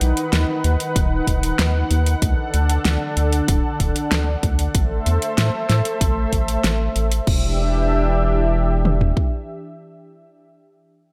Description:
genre	synthwave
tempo	95 BPM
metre	4/4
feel	straight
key	E minor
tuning	A4 = 443 Hz
part	lush unison pad	sustained chords	0.0-10.5 s	D3 to F#5	-26 LUFS	equal	chorus, sidechain pumping
part	round analog bass	bass	0.0-9.1 s	D1 to A2	-22 LUFS	equal	sidechain pumping
part	pop drum kit	drums	0.0-7.4 s	crash cymbal, hi-hat, snare drum	-26 LUFS	equal	studio reverb
part	pop drum kit	drums	1.0-9.3 s	kick drum, toms	-23 LUFS	equal	studio reverb
room	light reverb, digital ambience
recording	none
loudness	-20 LUFS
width	mono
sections	0.0-7.3 A section; 7.3-9.8 B section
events	none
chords	0.0 B; 2.2 D; 4.7 Am; 7.3 Em7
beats	0.33 0.96 1.59 | 2.22 2.85 3.48 4.12 | 4.75 5.38 6.01 6.64 | 7.27 7.91 8.54 9.17

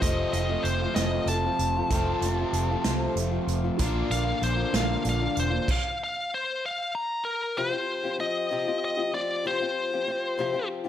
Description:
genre	folk rock and heartland rock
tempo	64 BPM (dotted quarters)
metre	6/8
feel	straight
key	F mixolydian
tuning	A4 = 440 Hz
part	bluesy overdriven lead guitar	melody	0.0-10.7 s	Bb4 to Bb5	-28 LUFS	left 2 dB	distortion
part	picked old ladder-braced acoustic guitar	accompaniment	0.0-10.9 s	F2 to G4	-31 LUFS	left 5 dB	none
part	warm upright piano	accompaniment	0.0-5.5 s	F4 to D5	-38 LUFS	right 6 dB	none
part	crunchy overdriven guitar	riff	0.0-5.7 s	F2 to F4	-31 LUFS	right 1 dB	none
part	vintage muted fingered electric bass	bass	0.0-5.6 s	E1 to C2	-29 LUFS	right 1 dB	none
part	unplugged drum kit	drums	0.0-5.8 s	crash cymbal, hi-hat, kick drum, snare drum	-30 LUFS	right 2 dB	none
room	light reverb, studio reverb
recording	none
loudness	-24 LUFS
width	side -10 dB against mid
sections	0.0-7.6 A section; 7.6-10.9 B section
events	lead electric guitar solo 0.0-7.6; stop 5.7-7.6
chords	0.0 F; 3.8 Bb; 7.6 Fsus2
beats	| 0.02 0.96 | 1.91 2.85 | 3.80 4.74 | 5.68 6.63 | 7.57 8.51 | 9.45 10.39

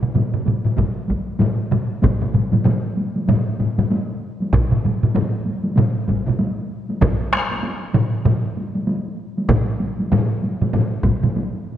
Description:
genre	japanese traditional, taiko drum ensemble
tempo	96 BPM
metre	4/4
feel	swing 60% on 16ths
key	none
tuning	none
part	taiko ensemble	percussion	0.0-11.5 s	none	-23 LUFS	equal	none
part	taiko ensemble	percussion	0.0-11.3 s	none	-22 LUFS	left 3 dB	none
part	taiko ensemble	percussion	0.0-11.3 s	none	-22 LUFS	right 5 dB	none
part	taiko ensemble	percussion	0.8-11.2 s	none	-23 LUFS	equal	none
room	moderate concert hall reverb, RT60 2.0 s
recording	nothing above 10.3 kHz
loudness	-18 LUFS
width	side -10 dB against mid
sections	0.0-2.0 A section; 2.0-11.8 B section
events	none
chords	none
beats	0.15 0.78 1.41 | 2.03 2.66 3.28 3.91 | 4.53 5.16 5.78 6.40 | 7.02 7.64 8.26 8.88 | 9.50 10.11 10.73 11.35

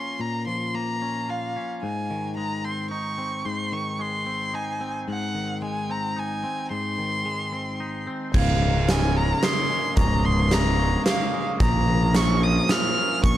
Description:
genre	post-rock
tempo	110 BPM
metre	3/4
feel	straight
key	Db major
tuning	A4 = 440 Hz
part	warm violin	melody	0.0-13.4 s	F5 to F6	-27 LUFS	equal	digital delay
part	twangy electric guitar	arpeggios	0.0-13.4 s	Db2 to F4	-29 LUFS	left 2 dB	digital delay
part	hand-pumped harmonium	sustained chords	8.3-13.4 s	F3 to F5	-33 LUFS	right 3 dB	none
part	glockenspiel with rubber mallets	arpeggios	8.3-13.4 s	Db6 to Bb6	-35 LUFS	right 8 dB	digital delay
part	fuzz fingered electric bass	bass	8.3-13.4 s	Db1 to Bb1	-22 LUFS	equal	overdrive
part	huge arena drum kit	drums	8.3-13.4 s	crash cymbal, hi-hat, kick drum, snare drum	-24 LUFS	right 1 dB	none
room	small room ambience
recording	dark, warm production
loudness	-22 LUFS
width	side -13 dB against mid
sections	0.0-8.3 A section; 8.3-13.4 B section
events	none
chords	0.0 Bbm; 1.8 Ab; 8.3 Db6; 11.6 Bbm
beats	| 0.20 0.75 1.29 | 1.83 2.37 2.92 | 3.46 4.00 4.54 | 5.09 5.63 6.17 | 6.72 7.26 7.80 | 8.35 8.89 9.43 | 9.98 10.52 11.06 | 11.61 12.15 12.70 | 13.24

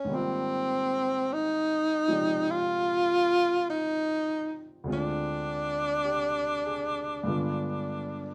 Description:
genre	jazz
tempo	50 BPM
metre	4/4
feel	swing 67% on 8ths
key	unclear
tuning	A4 = 440 Hz
part	breathy tenor saxophone	melody	0.0-8.3 s	C4 to F4	-29 LUFS	equal	none
part	warm baby grand piano	accompaniment	0.0-8.3 s	D2 to D5	-37 LUFS	equal	none
room	moderate club reverb, RT60 0.6 s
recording	none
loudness	-29 LUFS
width	mono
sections	0.0-8.3 A section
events	none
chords	0.1 Abmaj13; 4.9 Dm7b5; 7.3 G7b9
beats	| 0.09 1.28 2.48 3.68 | 4.88 6.08 7.28

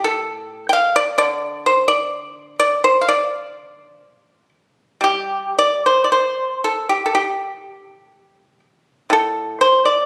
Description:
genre	chinese traditional, Chinese solo plucked strings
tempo	56-66 BPM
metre	2/4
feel	rubato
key	unclear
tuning	A4 = 440 Hz
part	pipa	solo	0.0-10.1 s	A2 to G5	-18 LUFS	equal	none
room	moderate scoring stage reverb, RT60 1.6 s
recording	recorded on a phone in the room, studio reverb, compression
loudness	-18 LUFS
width	mono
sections	0.0-5.0 A section; 5.0-10.1 B section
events	none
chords	none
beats	0.28 | 1.20 2.14 | 3.08 4.03 | 5.04 6.10 | 7.13 8.13 | 9.12

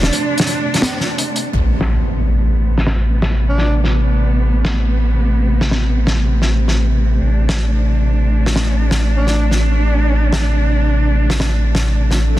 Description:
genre	half-time drum and bass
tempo	169 BPM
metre	4/4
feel	swing 54% on 16ths, half-time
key	A minor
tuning	A4 = 440 Hz
part	dark studio cello section	sustained chords	0.0-12.4 s	C3 to D4	-21 LUFS	right 1 dB	none
part	saturated sub bass	bass	0.0-12.4 s	E1 to A1	-15 LUFS	equal	none
part	crunchy breakbeat drum kit	drums	0.0-12.4 s	hi-hat, snare drum	-21 LUFS	equal	low-pass filter on hats, low-pass filter on snare, low-pass filter on room
part	metallic inharmonic drone	texture	0.0-1.5 s	D4	-34 LUFS	right 1 dB	none
part	impact and swell	sound effects	1.5-3.0, 12.3-12.4 s	none	-22 LUFS	equal	none
part	warm alto saxophone	melody	3.5-3.8, 9.2-9.4 s	D4	-28 LUFS	equal	vintage 12-bit sampler grit, dub echo
room	light reverb, small room ambience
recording	dense, heavily limited modern master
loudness	-13 LUFS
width	side -15 dB against mid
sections	0.0-1.5 A section; 1.5-12.4 B section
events	drop 0.0-1.5; break 0.1-1.5; impact 1.5-3.0; filter sweep on drum 1.5-12.4; swell 12.3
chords	0.0 Am; 1.5 Amadd9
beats	| 0.11 0.47 0.82 1.18 | 1.53 1.89 2.24 2.60 | 2.96 3.31 3.67 4.02 | 4.38 4.73 5.08 5.44 | 5.79 6.15 6.50 6.86 | 7.21 7.57 7.92 8.28 | 8.63 8.99 9.35 9.70 | 10.05 10.41 10.77 11.12 | 11.47 11.83 12.19

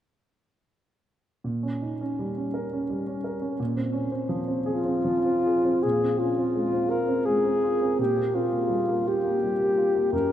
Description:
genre	classical, impressionist duo for alto saxophone and grand piano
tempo	56 BPM (dotted quarters)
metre	6/8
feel	rubato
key	Bb minor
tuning	A4 = 441 Hz
part	dark grand piano	accompaniment	1.4-10.3 s	Gb2 to Bb4	-27 LUFS	right 1 dB	none
part	mellow alto saxophone	melody	4.7-10.3 s	F4 to Bb4	-23 LUFS	left 1 dB	none
room	wet cathedral reverb, RT60 5.1 s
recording	in a vast, echoing space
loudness	-23 LUFS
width	side -11 dB against mid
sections	1.5-5.8 A section; 5.8-10.3 B section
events	none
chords	1.5 Bbm6; 3.6 Bbm9; 8.0 Gm7/Bb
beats	| 1.46 2.55 | 3.60 4.66 | 5.84 6.91 | 7.99 9.07 | 10.13

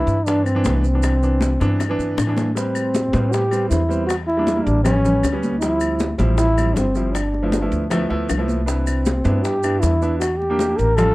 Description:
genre	Afro-Cuban jazz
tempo	157 BPM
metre	4/4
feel	straight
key	A minor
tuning	A4 = 440 Hz
part	mellow trombone	melody	0.0-11.1 s	B3 to Bb4	-21 LUFS	equal	none
part	warm concert grand piano	accompaniment	0.0-11.1 s	E3 to B4	-24 LUFS	right 1 dB	none
part	upright bass	bass	0.1-11.1 s	G1 to A2	-21 LUFS	equal	none
part	congas	percussion	0.1-11.1 s	none	-26 LUFS	equal	none
part	maracas	percussion	0.1-11.1 s	none	-37 LUFS	right 12 dB	none
part	bongos	percussion	0.3-11.1 s	none	-30 LUFS	left 5 dB	none
part	claves	percussion	0.5-11.1 s	none	-34 LUFS	left 7 dB	none
room	light reverb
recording	dry, close 1970s-style studio recording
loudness	-17 LUFS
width	side -19 dB against mid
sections	0.0-2.6 A section; 2.6-11.1 B section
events	drum fill 1.4-2.6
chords	0.0 Cmaj9; 2.6 Am9; 4.1 Em7b5; 4.9 A7; 5.6 Dm11; 7.2 G13; 8.7 Cmaj7; 10.2 Em7b5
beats	0.27 0.65 | 1.04 1.42 1.80 2.18 | 2.57 2.95 3.33 3.71 | 4.09 4.48 4.86 5.24 | 5.62 6.01 6.39 6.77 | 7.15 7.54 7.92 8.30 | 8.68 9.07 9.45 9.83 | 10.21 10.60 10.98

